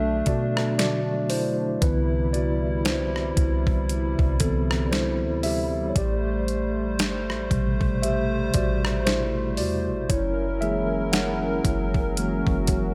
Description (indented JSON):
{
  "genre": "contemporary R&B",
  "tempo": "58 BPM",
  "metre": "4/4",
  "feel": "swing 58% on 16ths",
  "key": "A dorian",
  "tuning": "A4 = 440 Hz",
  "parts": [
    { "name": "mellow tine electric piano", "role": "accompaniment", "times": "0.0-12.9 s", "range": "B2 to F#5", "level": "-29 LUFS", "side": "equal", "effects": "none" },
    { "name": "hollow soft pad", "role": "sustained chords", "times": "0.0-12.9 s", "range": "C3 to C5", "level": "-32 LUFS", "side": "equal", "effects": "chorus" },
    { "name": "soft 808-style bass", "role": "bass", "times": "0.0-12.9 s", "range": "F#1 to B2", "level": "-30 LUFS", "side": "equal", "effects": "none" },
    { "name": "detuned 8-bit digital drum machine", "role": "drums", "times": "0.3-12.9 s", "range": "hi-hat, kick drum, rim click, snare drum", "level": "-28 LUFS", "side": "equal", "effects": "none" }
  ],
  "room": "light reverb",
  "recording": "none",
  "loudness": "-24 LUFS",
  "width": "mono",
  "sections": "0.0-12.9 A section",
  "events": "tine electric piano solo 0.0-12.9",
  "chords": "0.0 Bm7; 1.8 Cmaj7; 6.0 Am9; 10.1 F#7"
}